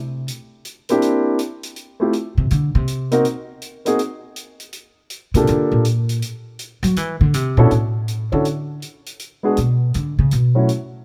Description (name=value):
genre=jazz piano trio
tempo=162 BPM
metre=4/4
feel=swing 65% on 8ths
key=unclear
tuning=A4 = 440 Hz
part: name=upright bass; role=bass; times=0.0-10.7 s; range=A2 to F#3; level=-20 LUFS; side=equal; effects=none
part: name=hi-hat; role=drums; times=0.3-10.8 s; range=none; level=-35 LUFS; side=equal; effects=none
part: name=dark baby grand piano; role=melody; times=0.9-10.7 s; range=B2 to Bb4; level=-21 LUFS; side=equal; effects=none
room=little or no reverb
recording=close, detailed microphones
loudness=-19 LUFS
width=mono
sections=0.0-7.7 A section; 7.7-11.0 A section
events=upright bass solo 0.0-11.0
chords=0.3 C9; 1.8 N.C.; 4.7 Gm7; 6.2 F#7b13; 7.7 Asus4; 9.2 G#m; 9.9 Bmadd9